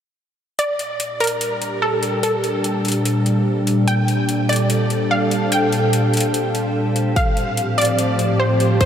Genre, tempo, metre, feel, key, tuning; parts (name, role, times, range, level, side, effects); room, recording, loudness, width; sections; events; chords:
heavy wobble dubstep; 146 BPM; 4/4; half-time; G minor; A4 = 440 Hz
wide unison pluck; melody; 0.6-8.9 s; A4 to G5; -21 LUFS; equal; diffuse ambient delay
lush unison pad; sustained chords; 1.6-8.9 s; A2 to A4; -18 LUFS; equal; chorus, sidechain pumping
electronic hi-hat; drums; 0.6-8.9 s; -25 LUFS; left 2 dB; overdrive
granular cloud pad; texture; 3.0-8.9 s; G4 to A5; -30 LUFS; equal; built-in reverb, lush chorus, sidechain pumping
electronic kick drum; drums; 7.2-8.9 s; -18 LUFS; equal; overdrive
wet huge ambient reverb, RT60 7.7 s; dreamy mix soaked in reverb; -16 LUFS; side -9 dB against mid
0.6-8.9 A section
fade-in on ambient pad 0.6-8.9
0.6 Gm; 7.2 Fadd9